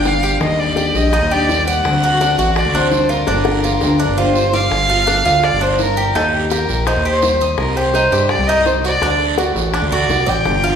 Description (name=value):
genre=latin, Cuban son and guajira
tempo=168 BPM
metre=4/4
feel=straight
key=G minor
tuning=A4 = 440 Hz
part: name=warm violin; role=melody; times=0.0-10.8 s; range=G4 to G5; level=-17 LUFS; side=equal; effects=none
part: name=picked steel-string acoustic guitar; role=accompaniment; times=0.0-4.7, 10.4-10.8 s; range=D3 to G4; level=-22 LUFS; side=left 3 dB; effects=none
part: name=Cuban tres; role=arpeggios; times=0.0-10.8 s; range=D4 to Eb5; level=-19 LUFS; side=right 2 dB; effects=none
part: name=fat analog bass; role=bass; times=0.0-10.8 s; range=G1 to G2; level=-20 LUFS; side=equal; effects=none
part: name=guiro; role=percussion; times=0.0-10.8 s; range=none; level=-27 LUFS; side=right 5 dB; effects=none
part: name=bongos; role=percussion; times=0.1-10.8 s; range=none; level=-24 LUFS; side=left 4 dB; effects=none
room=wet recital hall reverb, RT60 1.5 s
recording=recorded in a church or concert hall, lossy compression artefacts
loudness=-13 LUFS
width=side -7 dB against mid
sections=0.0-4.7 A section; 4.7-10.8 A section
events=drum fill 3.3-4.7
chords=0.4 Ebmaj7; 1.9 D7; 3.3 Gm7; 6.2 Eb6; 7.6 Cm; 9.0 D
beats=0.06 | 0.41 0.77 1.13 1.49 | 1.85 2.21 2.57 2.93 | 3.29 3.65 4.00 4.36 | 4.72 5.08 5.44 5.79 | 6.15 6.51 6.87 7.23 | 7.58 7.94 8.30 8.66 | 9.02 9.38 9.73 10.09 | 10.45